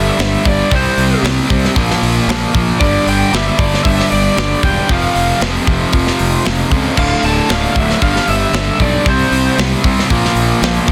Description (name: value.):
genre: hard rock.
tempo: 115 BPM.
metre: 4/4.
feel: straight.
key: unclear.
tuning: A4 = 440 Hz.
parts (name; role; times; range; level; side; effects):
lead guitar through a small cranked amp; melody; 0.0-9.6 s; C5 to A5; -20 LUFS; equal; overdrive, slapback echo.
cranked stack guitar; riff; 0.0-10.9 s; D2 to C4; -21 LUFS; equal; overdrive.
crunchy overdriven guitar; riff; 0.0-10.9 s; D2 to C4; -23 LUFS; equal; none.
distorted electric guitar; riff; 0.0-10.9 s; D2 to C4; -24 LUFS; equal; none.
fuzz fingered electric bass; bass; 0.0-10.9 s; D1 to C#2; -20 LUFS; equal; overdrive.
tight metal drum kit; drums; 0.2-10.9 s; crash cymbal, hi-hat, kick drum, snare drum; -20 LUFS; equal; none.
room: light reverb, small room reverb.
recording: dense, heavily limited modern master.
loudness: -14 LUFS.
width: mono.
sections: 0.0-10.9 A section.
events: none.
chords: 0.0 G5; 0.7 C5; 1.8 Bb5; 2.8 G5; 4.9 F5; 7.0 D5; 8.0 G; 9.1 C5; 10.1 Bb5.